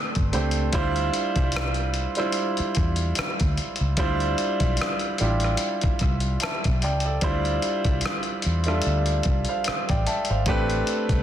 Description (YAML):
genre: R&B, neo-soul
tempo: 74 BPM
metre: 4/4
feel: swing 54% on 16ths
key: D dorian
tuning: A4 = 439 Hz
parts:
  - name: clear concert grand piano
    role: accompaniment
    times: 0.0-11.2 s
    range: G3 to A5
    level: -26 LUFS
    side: right 2 dB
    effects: none
  - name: vintage muted fingered electric bass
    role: bass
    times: 0.2-11.2 s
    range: G1 to E2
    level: -25 LUFS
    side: equal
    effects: none
  - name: dusty soul sampler-style drum kit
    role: drums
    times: 0.2-11.2 s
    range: hi-hat, kick drum, rim click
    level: -26 LUFS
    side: left 1 dB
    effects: soft clipping on snare
room: little or no reverb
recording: dense, heavily limited modern master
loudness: -22 LUFS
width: side -10 dB against mid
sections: 0.0-7.2 A section; 7.2-11.2 A section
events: none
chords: 0.0 Am11; 0.7 Dm11; 10.5 Am11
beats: | 0.73 1.54 2.36 3.17 | 3.98 4.79 5.60 6.41 | 7.22 8.03 8.84 9.65 | 10.46